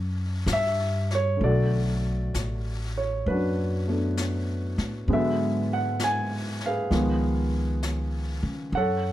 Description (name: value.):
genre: jazz ballad.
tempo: 66 BPM.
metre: 4/4.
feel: swing 67% on 8ths.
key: B minor.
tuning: A4 = 440 Hz.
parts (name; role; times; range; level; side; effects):
upright bass; bass; 0.0-9.1 s; A1 to C#3; -27 LUFS; equal; none.
warm grand piano; accompaniment; 0.5-9.1 s; D3 to G#5; -26 LUFS; equal; none.
jazz brush drum kit; drums; 0.5-9.1 s; brushed snare drum, hi-hat, snare drum; -37 LUFS; left 3 dB; none.
room: light reverb.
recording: none.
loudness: -24 LUFS.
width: side -13 dB against mid.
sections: 0.0-1.4 A section; 1.4-9.1 B section.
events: none.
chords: 0.0 Em69/F#; 1.4 Bm7; 5.1 G#m7b5; 6.9 C#7.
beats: 0.46 | 1.40 2.33 3.26 4.17 | 5.08 6.00 6.91 7.82 | 8.73.